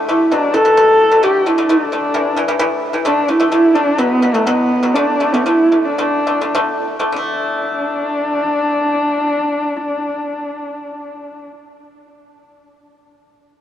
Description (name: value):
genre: mongolian traditional, Mongolian folk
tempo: 98-131 BPM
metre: 4/4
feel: straight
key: unclear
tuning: A4 = 440 Hz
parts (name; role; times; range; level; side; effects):
- pipa; arpeggios; 0.0-11.5 s; A2 to A3; -19 LUFS; left 1 dB; none
- dark horsehead fiddle; melody; 0.1-11.5 s; A3 to A4; -14 LUFS; equal; none
room: moderate huge ambient reverb, RT60 6.7 s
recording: worn, warbling old tape, cassette tape, warbly pitch drift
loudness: -13 LUFS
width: side -10 dB against mid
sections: 0.0-7.1 A section; 7.1-12.0 B section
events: slowing down 3.1-7.1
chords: 0.3 B5; 1.2 D5; 2.1 A5; 3.1 D5; 4.0 B5; 5.0 D5